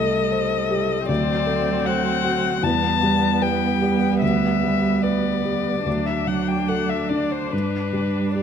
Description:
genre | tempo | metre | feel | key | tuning
classical, slow romantic movement for piano quartet | 71-79 BPM | 4/4 | rubato | G major | A4 = 444 Hz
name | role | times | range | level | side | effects
muted violin | melody | 0.0-8.4 s | B4 to A5 | -24 LUFS | left 9 dB | none
muted cello | second line | 0.0-8.4 s | F#3 to G3 | -26 LUFS | right 7 dB | none
muted viola | accompaniment | 0.0-8.4 s | B3 to A4 | -27 LUFS | right 3 dB | none
warm baby grand piano | accompaniment | 0.0-8.4 s | C2 to C5 | -24 LUFS | left 1 dB | none
room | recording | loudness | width
moderate recital hall reverb, RT60 1.6 s | close, detailed microphones | -19 LUFS | side -8 dB against mid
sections
0.0-8.4 A section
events
none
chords
0.0 C5; 1.1 D7; 2.6 Em; 4.2 G/D; 5.9 D; 7.5 G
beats
0.33 | 1.09 1.86 2.64 3.42 | 4.22 5.04 5.86 6.69 | 7.53 8.35

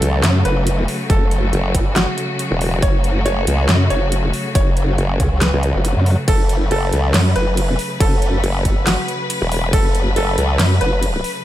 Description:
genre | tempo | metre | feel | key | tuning
heavy wobble dubstep | 139 BPM | 4/4 | swing 55% on 16ths, half-time | F# minor | A4 = 439 Hz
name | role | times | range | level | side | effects
bright baby grand piano | melody | 0.0-11.4 s | F#4 to C#5 | -25 LUFS | right 1 dB | tape echo
clear symphonic string section | sustained chords | 0.0-11.4 s | C#3 to B4 | -23 LUFS | left 1 dB | sidechain pumping, low-pass filter
formant-sweep wobble bass | bass | 0.0-10.6 s | E1 to C#2 | -17 LUFS | equal | chorus, overdrive
big-room dance drum kit | drums | 0.0-11.3 s | crash cymbal, handclaps, hi-hat, snare drum | -23 LUFS | equal | overdrive, studio reverb
formant-sweep wobble bass | bass | 0.2-11.2 s | F#1 to F#2 | -17 LUFS | equal | chorus, overdrive
electronic kick drum | drums | 1.1-9.8 s | none | -17 LUFS | equal | overdrive, studio reverb
room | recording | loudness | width
digital ambience | none | -14 LUFS | side -13 dB against mid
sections
0.0-11.4 A section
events
none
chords
0.0 F#m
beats
0.23 0.67 | 1.10 1.53 1.96 2.39 | 2.82 3.26 3.69 4.12 | 4.55 4.98 5.41 5.85 | 6.28 6.71 7.14 7.57 | 8.00 8.44 8.87 9.30 | 9.73 10.16 10.59 11.03

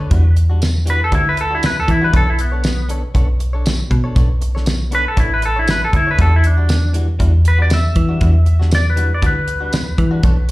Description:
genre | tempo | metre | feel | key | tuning
straight-eighth soul blues | 118 BPM | 4/4 | swing 55% on 16ths | unclear | A4 = 439 Hz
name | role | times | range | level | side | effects
clean lap steel guitar | melody | 0.0-10.5 s | B3 to E5 | -19 LUFS | equal | slapback echo
direct-recorded clean electric guitar | stabs | 0.0-10.5 s | E3 to C#5 | -29 LUFS | left 2 dB | slapback echo
metallic FM bass | bass | 0.0-10.5 s | A1 to E3 | -15 LUFS | equal | none
damped 70s drum kit | drums | 0.1-10.5 s | hi-hat, kick drum, snare drum, tambourine | -17 LUFS | equal | none
room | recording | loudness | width
studio reverb | live gig heard through the venue's PA, club reverb | -13 LUFS | side -18 dB against mid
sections
0.0-10.5 A section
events
electric slide guitar solo 0.0-10.5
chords
0.1 Em9; 2.1 Bm9; 6.2 Em9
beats
| 0.11 0.62 1.12 1.63 | 2.14 2.64 3.15 3.66 | 4.16 4.67 5.17 5.68 | 6.19 6.69 7.20 7.71 | 8.21 8.72 9.22 9.73 | 10.24

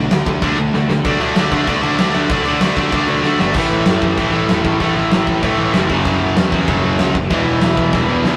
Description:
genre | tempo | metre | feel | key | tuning
punk rock | 192 BPM | 4/4 | straight | A major from 3.6 s | A4 = 440 Hz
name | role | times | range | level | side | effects
cranked stack guitar | riff | 0.0-8.4 s | E2 to D4 | -25 LUFS | equal | overdrive
distorted electric guitar | riff | 0.0-8.4 s | E2 to D4 | -20 LUFS | equal | distortion
scooped high-gain guitar | riff | 0.0-8.4 s | D3 to A4 | -27 LUFS | equal | none
fuzz picked electric bass | bass | 0.0-8.4 s | E1 to D3 | -24 LUFS | equal | overdrive
big rock drum kit | drums | 0.1-8.3 s | crash cymbal, kick drum, snare drum | -21 LUFS | equal | none
room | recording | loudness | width
light reverb | rough rehearsal-room recording | -16 LUFS | mono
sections
0.0-1.1 A section; 1.1-3.6 B section; 3.6-8.4 C section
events
drum fill 0.7-1.1, 3.2-3.6, 7.9-8.4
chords
0.0 D; 3.6 A; 5.9 F#m; 7.3 E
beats
0.12 0.43 0.74 | 1.05 1.36 1.68 1.99 | 2.30 2.61 2.93 3.24 | 3.55 3.87 4.18 4.49 | 4.80 5.12 5.43 5.74 | 6.06 6.37 6.68 7.00 | 7.31 7.62 7.94 8.25

